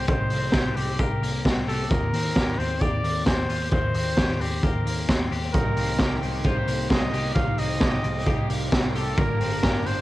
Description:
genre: jangly indie pop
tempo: 132 BPM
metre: 4/4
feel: straight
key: unclear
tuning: A4 = 442 Hz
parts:
  - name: warm trumpet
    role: melody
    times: 0.0-10.0 s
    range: G4 to F5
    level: -30 LUFS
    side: equal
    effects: cassette tape
  - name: twelve-string electric guitar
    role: arpeggios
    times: 0.0-10.0 s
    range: Eb3 to G4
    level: -32 LUFS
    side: left 9 dB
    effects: cassette tape
  - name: vintage muted picked electric bass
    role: bass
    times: 0.0-10.0 s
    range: G1 to Eb2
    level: -29 LUFS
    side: equal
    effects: none
  - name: raw garage drum kit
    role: drums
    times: 0.1-10.0 s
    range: hi-hat, kick drum, snare drum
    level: -24 LUFS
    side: equal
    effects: cassette tape
  - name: crunchy overdriven guitar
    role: accompaniment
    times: 5.5-10.0 s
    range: G2 to G4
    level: -34 LUFS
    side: right 11 dB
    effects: cassette tape
room: small room reverb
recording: home recording on cassette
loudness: -21 LUFS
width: side -16 dB against mid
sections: 0.0-10.0 A section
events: none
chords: 0.0 Cm7; 1.9 Eb6; 5.5 Cm7; 9.2 Gm

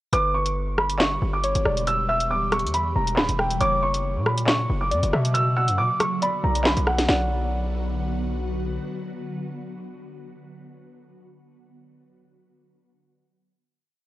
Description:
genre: hip hop, drill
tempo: 138 BPM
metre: 4/4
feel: half-time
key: B harmonic minor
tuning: A4 = 439 Hz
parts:
  - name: dark concert grand piano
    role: melody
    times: 0.1-8.4 s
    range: F#5 to E6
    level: -25 LUFS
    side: right 1 dB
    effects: low-pass filter, tape echo
  - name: soft round pluck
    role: second line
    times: 0.1-8.4 s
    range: B4 to F#5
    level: -30 LUFS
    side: left 2 dB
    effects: chorus, tape echo
  - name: ethereal airy pad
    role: sustained chords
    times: 0.7-10.4 s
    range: C#3 to G4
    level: -33 LUFS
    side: equal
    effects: ensemble chorus, built-in reverb, phaser
  - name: distorted 808-style bass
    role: bass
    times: 0.1-8.8 s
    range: D1 to B2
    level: -25 LUFS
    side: equal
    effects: distortion
  - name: drill drum kit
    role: drums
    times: 0.1-7.2 s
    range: handclaps, hi-hat, rim click, snare drum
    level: -24 LUFS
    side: equal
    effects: none
room: light reverb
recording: worn, warbling old tape, cassette tape, warbly pitch drift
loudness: -21 LUFS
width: side -16 dB against mid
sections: 0.1-7.1 hook; 7.1-10.6 final chord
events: none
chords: 0.1 G; 1.9 Em; 3.6 F#; 5.3 Bm

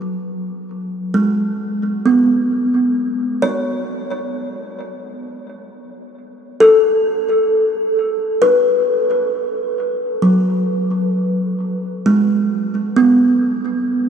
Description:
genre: ambient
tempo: 66 BPM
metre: 4/4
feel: straight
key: unclear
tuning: A4 = 440 Hz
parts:
  - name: kalimba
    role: solo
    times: 0.0-14.1 s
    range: F#3 to C#5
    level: -15 LUFS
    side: equal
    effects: tape echo
room: wet huge ambient reverb, RT60 8.9 s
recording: none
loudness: -14 LUFS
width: side -7 dB against mid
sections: 0.0-13.0 A section; 13.0-14.1 B section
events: none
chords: 0.0 B5; 13.0 N.C.

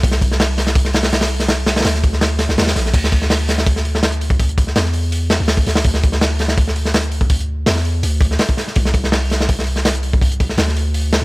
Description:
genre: drum and bass, jungle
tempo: 165 BPM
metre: 4/4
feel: straight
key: unclear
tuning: A4 = 442 Hz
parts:
  - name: long sustained 808-style bass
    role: bass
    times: 0.0-11.2 s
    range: Bb1 to E2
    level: -18 LUFS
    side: equal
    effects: none
  - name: crunchy breakbeat drum kit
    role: drums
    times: 0.0-11.2 s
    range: crash cymbal, hi-hat, kick drum, snare drum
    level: -16 LUFS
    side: equal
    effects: none
room: little or no reverb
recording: none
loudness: -14 LUFS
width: side -23 dB against mid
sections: 0.0-2.9 A section; 2.9-11.2 A section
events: drop 0.0-2.9, 2.9-11.2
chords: none

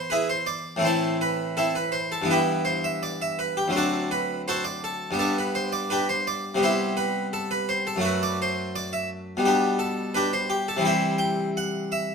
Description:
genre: classical, baroque-style suite movement for harpsichord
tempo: 84 BPM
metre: 4/4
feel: rubato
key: unclear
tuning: A4 = 440 Hz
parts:
  - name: harpsichord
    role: solo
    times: 0.0-12.1 s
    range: D2 to G5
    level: -23 LUFS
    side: equal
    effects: none
room: wet stone room reverb, RT60 1.0 s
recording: minimal, uncompressed stereo recording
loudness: -23 LUFS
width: side -5 dB against mid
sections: 0.0-12.1 A section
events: none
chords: 0.0 E7; 0.8 Am; 2.3 Em/G; 3.7 D7; 5.2 G; 6.6 Cmaj7; 8.0 F#m7b5; 9.4 G/B; 10.8 C

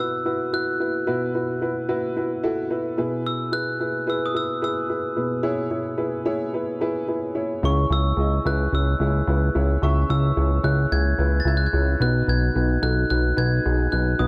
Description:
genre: piano-driven pop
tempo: 110 BPM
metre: 4/4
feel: swing 56% on 16ths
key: E major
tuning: A4 = 440 Hz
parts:
  - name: glockenspiel with soft plastic mallets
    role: melody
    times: 0.0-14.3 s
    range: C#6 to A6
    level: -30 LUFS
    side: equal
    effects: none
  - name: dark upright piano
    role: accompaniment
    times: 0.0-14.3 s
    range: B2 to E5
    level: -27 LUFS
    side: equal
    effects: none
  - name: fat analog bass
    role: bass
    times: 7.6-14.3 s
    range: B1 to C#2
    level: -23 LUFS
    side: equal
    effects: none
room: light reverb, studio ambience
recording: none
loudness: -23 LUFS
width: mono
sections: 0.0-14.3 A section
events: none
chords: 0.0 Bsus4; 3.0 E/B; 7.6 C#m; 12.0 B

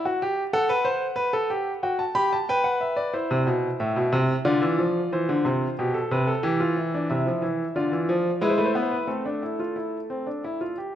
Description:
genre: classical, baroque-style 3-part fugue for grand piano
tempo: 91 BPM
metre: 3/4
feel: straight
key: C major, A minor from 7.1 s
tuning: A4 = 439 Hz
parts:
  - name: clear baby grand piano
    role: solo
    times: 0.0-10.9 s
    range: A2 to B5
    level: -22 LUFS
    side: equal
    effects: none
room: moderate recital hall reverb, RT60 1.7 s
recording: none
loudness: -22 LUFS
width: side -10 dB against mid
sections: 0.0-7.1 A section; 7.1-10.9 B section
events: none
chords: 0.0 G5; 0.5 Am69; 1.2 G; 2.5 G/B; 3.1 C; 4.5 Dmadd9; 5.1 N.C.; 6.4 C/E; 7.1 Cadd11; 7.8 Dm; 8.4 E/G#; 9.1 Am

